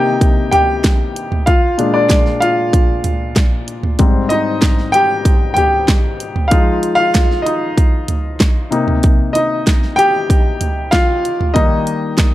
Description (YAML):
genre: piano-driven pop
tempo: 95 BPM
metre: 4/4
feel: straight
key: unclear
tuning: A4 = 441 Hz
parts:
  - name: clear baby grand piano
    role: accompaniment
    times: 0.0-12.3 s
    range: Ab2 to G5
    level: -15 LUFS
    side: left 1 dB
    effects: none
  - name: pop drum kit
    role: drums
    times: 0.2-12.3 s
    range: handclaps, hi-hat, kick drum, snare drum, toms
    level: -14 LUFS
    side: equal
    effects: none
  - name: group handclap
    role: percussion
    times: 0.8-12.3 s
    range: none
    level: -30 LUFS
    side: right 5 dB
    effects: none
room: studio reverb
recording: dark, warm production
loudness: -12 LUFS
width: side -15 dB against mid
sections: 0.0-12.3 A section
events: grand piano solo 0.0-12.3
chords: 0.0 Cm7; 1.5 Bb7; 4.0 Abmaj7; 6.5 Fm7; 8.7 Cm7; 11.6 Eb